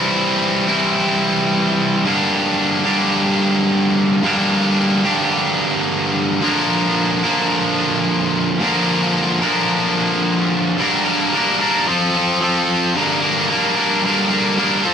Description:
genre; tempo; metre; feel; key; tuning
rock; 110 BPM; 4/4; straight; G dorian; A4 = 440 Hz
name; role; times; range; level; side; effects
distorted electric guitar; solo; 0.0-14.9 s; G2 to Bb4; -15 LUFS; equal; overdrive
room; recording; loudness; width
wet small room reverb, RT60 0.6 s; band playing live in one room; -15 LUFS; side -8 dB against mid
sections
0.0-10.8 A section; 10.8-14.9 B section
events
none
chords
0.0 C; 2.1 Gm; 6.4 Bb; 10.8 Gm; 11.9 F; 13.0 Gm

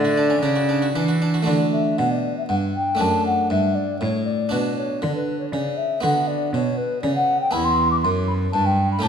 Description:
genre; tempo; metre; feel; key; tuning
classical, baroque-style sonata movement with continuo; 119 BPM; 3/4; straight; D major; A4 = 439 Hz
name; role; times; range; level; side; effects
mellow hollow baroque flute; melody; 0.0-9.1 s; B4 to D6; -22 LUFS; left 3 dB; none
harpsichord; accompaniment; 0.0-9.1 s; E2 to G4; -24 LUFS; right 2 dB; none
rich cello; bass; 0.0-9.1 s; E2 to E3; -24 LUFS; right 2 dB; none
room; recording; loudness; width
wet recital hall reverb, RT60 1.8 s; none; -19 LUFS; side -7 dB against mid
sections
0.0-1.5 A section; 1.5-9.1 B section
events
none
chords
0.0 D; 3.0 D/F#; 4.5 Bm; 7.5 Em

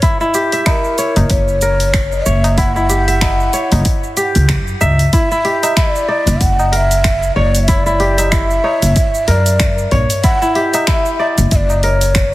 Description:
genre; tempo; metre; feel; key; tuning
organic downtempo; 94 BPM; 4/4; swing 58% on 16ths; F# phrygian dominant; A4 = 441 Hz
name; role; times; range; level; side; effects
kora; arpeggios; 0.0-12.3 s; E4 to E5; -18 LUFS; equal; tape echo
deep house drum kit; drums; 0.0-12.3 s; cabasa, finger snaps, hi-hat; -21 LUFS; right 1 dB; small room reverb
electronic kick drum; drums; 0.0-12.3 s; none; -15 LUFS; equal; small room reverb
tabla; percussion; 0.2-12.0 s; none; -24 LUFS; left 2 dB; none
breathy mellow ney; melody; 0.7-12.3 s; A#4 to F#5; -18 LUFS; equal; tape echo
upright bass; bass; 1.2-12.3 s; F#1 to F#2; -15 LUFS; equal; sidechain pumping
room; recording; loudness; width
light reverb, small room ambience; heavily compressed radio sound, multiband compression; -11 LUFS; side -17 dB against mid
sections
0.0-5.1 A section; 5.1-12.3 B section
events
filter sweep on kora 0.0-5.1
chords
0.0 F#7b9; 5.1 F#7b9b13

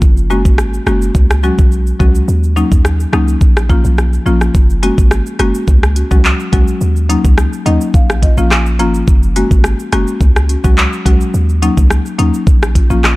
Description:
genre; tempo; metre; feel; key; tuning
dancehall; 106 BPM; 4/4; straight; unclear; A4 = 439 Hz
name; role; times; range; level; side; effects
clean 808-style bass; bass; 0.0-13.2 s; Gb1 to Eb2; -14 LUFS; equal; none
island pop drum kit; drums; 0.0-13.2 s; handclaps, hi-hat, kick drum, rim click, shaker; -12 LUFS; equal; none
buzzing marimba with medium mallets; accompaniment; 0.3-13.0 s; F3 to Bb5; -16 LUFS; left 2 dB; none
room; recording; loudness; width
little or no reverb; dark, warm production; -9 LUFS; side -20 dB against mid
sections
0.0-4.5 A section; 4.5-13.2 B section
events
marimba fill 7.4-9.1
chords
0.0 Gbadd9; 1.2 Dbsus4; 2.3 Ebm7; 3.4 Bbm; 4.5 Gbadd9; 5.7 Dbsus4; 6.8 Ebm7; 7.9 Bbm; 9.1 Gbadd9; 10.2 Dbsus4; 11.3 Ebm7; 12.5 Bbm

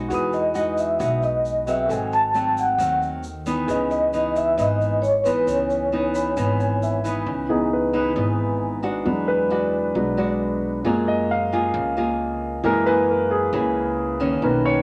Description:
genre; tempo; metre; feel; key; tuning
bossa nova; 134 BPM; 4/4; straight; C# minor; A4 = 440 Hz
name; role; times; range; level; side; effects
nylon-string guitar; accompaniment; 0.0-14.8 s; G#2 to G#4; -28 LUFS; equal; none
warm grand piano; accompaniment; 0.0-14.8 s; D#3 to D#6; -26 LUFS; equal; none
upright bass; bass; 0.0-14.8 s; G#1 to F#2; -33 LUFS; equal; none
egg shaker; percussion; 0.1-7.3 s; none; -49 LUFS; equal; none
vibraphone with soft mallets; melody; 0.3-7.0 s; B4 to A5; -24 LUFS; equal; none
room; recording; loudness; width
moderate small room ambience, RT60 0.5 s; none; -22 LUFS; mono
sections
0.0-7.3 A section; 7.3-14.8 B section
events
grand piano fill 5.9-7.3; grand piano solo 7.3-14.8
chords
0.1 Emaj9; 1.9 G#7b9; 3.7 C#m9; 9.1 E9; 10.8 F#maj9; 12.6 F#9

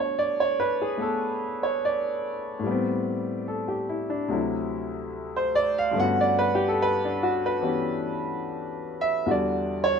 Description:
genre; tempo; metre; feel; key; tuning
solo jazz; 72 BPM; 4/4; swing 66% on 8ths; unclear; A4 = 436 Hz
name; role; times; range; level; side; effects
clear concert grand piano; solo; 0.0-10.0 s; D2 to F#5; -24 LUFS; equal; none
room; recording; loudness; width
light reverb; minimal, uncompressed stereo recording; -24 LUFS; side -6 dB against mid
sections
0.0-10.0 A section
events
grand piano solo 0.0-10.0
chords
0.0 Bm7; 2.6 Am9; 4.3 D9; 6.0 Gmaj9#11; 9.3 Em9

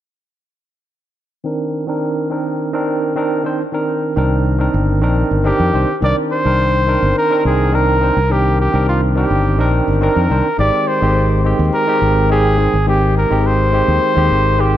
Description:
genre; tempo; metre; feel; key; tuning
sunset chillout; 105 BPM; 4/4; straight; C minor; A4 = 440 Hz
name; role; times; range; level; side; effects
barky tine electric piano; accompaniment; 1.4-14.8 s; Eb3 to C5; -17 LUFS; right 1 dB; auto-pan, low-pass filter, digital delay
fingered electric bass; bass; 4.2-14.8 s; G1 to F2; -16 LUFS; equal; none
warm flugelhorn; melody; 5.5-14.8 s; F4 to D5; -17 LUFS; equal; tape echo
room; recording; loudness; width
light reverb, small room reverb; dark, warm production; -13 LUFS; side -12 dB against mid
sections
1.4-6.0 A section; 6.0-14.8 B section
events
filter sweep on tine electric piano 1.4-6.0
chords
1.4 Cm9; 10.6 Abmaj7

